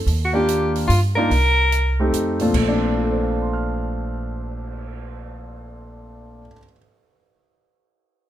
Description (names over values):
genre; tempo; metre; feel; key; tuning
jazz, small-group swing and bop; 146 BPM; 3/4; swing 64% on 8ths; Bb major; A4 = 440 Hz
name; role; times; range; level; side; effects
upright bass; bass; 0.0-6.5 s; Bb1 to G2; -23 LUFS; right 1 dB; none
open jazz drum kit; drums; 0.1-4.9 s; crash cymbal, cymbal swell, hi-hat, kick drum; -30 LUFS; right 3 dB; none
warm soprano saxophone; melody; 0.2-2.1 s; F4 to Bb4; -20 LUFS; left 1 dB; none
clear grand piano; accompaniment; 0.3-6.8 s; Bb2 to F6; -23 LUFS; equal; none
room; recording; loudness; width
light reverb; minimal, uncompressed stereo recording; -17 LUFS; side -12 dB against mid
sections
0.0-2.5 A section; 2.5-5.0 B section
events
none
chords
0.1 Ebmaj7; 0.9 G5; 1.3 Cm7; 2.1 F7; 2.5 Bbmaj9